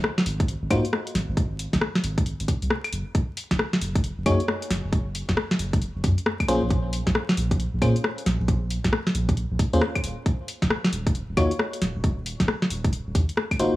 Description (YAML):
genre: UK garage, two-step garage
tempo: 135 BPM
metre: 4/4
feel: swing 63% on 16ths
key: Eb dorian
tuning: A4 = 442 Hz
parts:
  - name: punchy analog drum machine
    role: drums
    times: 0.0-13.7 s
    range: claves, hi-hat, rim click, snare drum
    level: -26 LUFS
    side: equal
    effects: overdrive
  - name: soft dub sub bass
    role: bass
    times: 0.3-13.8 s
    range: Eb1 to Bb2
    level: -26 LUFS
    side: equal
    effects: tube saturation, sidechain pumping
  - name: electronic kick drum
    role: drums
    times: 0.4-13.6 s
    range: none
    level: -24 LUFS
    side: equal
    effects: overdrive
  - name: FM electric piano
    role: stabs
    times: 0.7-0.8, 4.3-13.7 s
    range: Bb3 to Db5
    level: -27 LUFS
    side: left 1 dB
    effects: chorus, dub echo
room: light reverb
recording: vinyl crackle, small room ambience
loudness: -22 LUFS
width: side -17 dB against mid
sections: 0.0-13.8 A section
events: kick drops out 2.7-3.1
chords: none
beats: 0.04 0.48 0.93 | 1.37 1.82 2.26 2.71 | 3.15 3.59 4.04 4.48 | 4.93 5.37 5.82 6.26 | 6.71 7.15 7.59 8.04 | 8.48 8.93 9.37 9.82 | 10.26 10.71 11.15 11.59 | 12.04 12.48 12.93 13.37